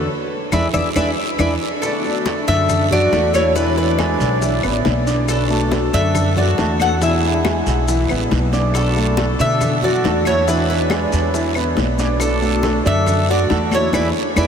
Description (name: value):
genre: latin, Cuban son and guajira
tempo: 139 BPM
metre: 4/4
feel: straight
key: unclear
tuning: A4 = 440 Hz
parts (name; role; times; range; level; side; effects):
- Cuban tres; melody; 0.0-14.5 s; A4 to F#5; -21 LUFS; equal; analog delay
- picked old ladder-braced acoustic guitar; accompaniment; 0.0-14.5 s; B2 to F#4; -26 LUFS; left 4 dB; ensemble chorus
- warm concert grand piano; arpeggios; 0.0-14.5 s; D3 to D6; -22 LUFS; right 1 dB; none
- upright bass; bass; 0.0-14.5 s; A1 to B2; -20 LUFS; equal; none
- bongos; percussion; 0.5-14.5 s; none; -29 LUFS; left 6 dB; none
- claves; percussion; 0.5-14.5 s; none; -34 LUFS; left 6 dB; none
- congas; percussion; 0.5-14.5 s; none; -28 LUFS; left 2 dB; none
- guiro; percussion; 0.5-14.5 s; none; -32 LUFS; right 9 dB; none
- maracas; percussion; 0.5-14.5 s; none; -35 LUFS; left 5 dB; none
- bright reedy concert flute; second line; 1.8-14.5 s; D4 to A4; -26 LUFS; right 3 dB; analog delay
room: wet huge ambient reverb, RT60 7.7 s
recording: dreamy mix soaked in reverb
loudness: -15 LUFS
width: side -7 dB against mid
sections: 0.0-1.8 A section; 1.8-14.5 B section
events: band accent 0.1-1.8, 13.9-14.5; drum fill 1.2-1.8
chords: 0.1 E7; 1.8 Bm7; 3.6 E7; 5.3 Bm7; 7.0 E7; 8.7 Bm7; 10.5 E7; 12.2 Bm7; 13.9 E7